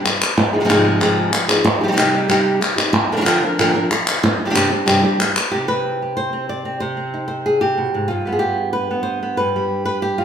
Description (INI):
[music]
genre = flamenco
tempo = 186 BPM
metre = 4/4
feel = straight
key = unclear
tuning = A4 = 441 Hz
[part]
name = flamenco guitar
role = melody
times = 0.0-10.2 s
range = G2 to D5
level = -17 LUFS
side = equal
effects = none
[part]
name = palmas hand claps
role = percussion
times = 0.1-5.5 s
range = none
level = -19 LUFS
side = left 1 dB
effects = none
[sound]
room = wet large studio reverb, RT60 1.2 s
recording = band playing live in one room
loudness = -15 LUFS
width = side -8 dB against mid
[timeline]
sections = 0.0-5.5 A section; 5.5-10.2 B section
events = none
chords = 0.4 Ab6; 1.7 Cm; 2.9 Bbadd9; 4.2 Gsus4; 5.5 Cm; 8.1 G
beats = 0.05 | 0.37 0.69 1.02 1.34 | 1.66 1.98 2.30 2.62 | 2.94 3.27 3.59 3.91 | 4.23 4.55 4.88 5.20 | 5.52 5.84 6.16 6.49 | 6.81 7.13 7.45 7.78 | 8.10 8.42 8.74 9.07 | 9.39 9.71 10.03